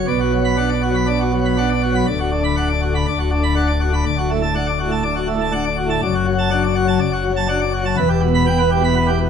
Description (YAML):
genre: classical, organ toccata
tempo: 122 BPM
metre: 4/4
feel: straight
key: B minor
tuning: A4 = 441 Hz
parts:
  - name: pipe organ, plenum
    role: solo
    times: 0.0-9.3 s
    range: D1 to B5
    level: -16 LUFS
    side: left 1 dB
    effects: none
room: wet stone room reverb, RT60 1.0 s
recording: none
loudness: -16 LUFS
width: side -7 dB against mid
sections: 0.1-9.3 A section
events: none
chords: 0.1 Bm; 2.1 Bm/D; 4.1 D; 6.0 D/F#; 8.0 Em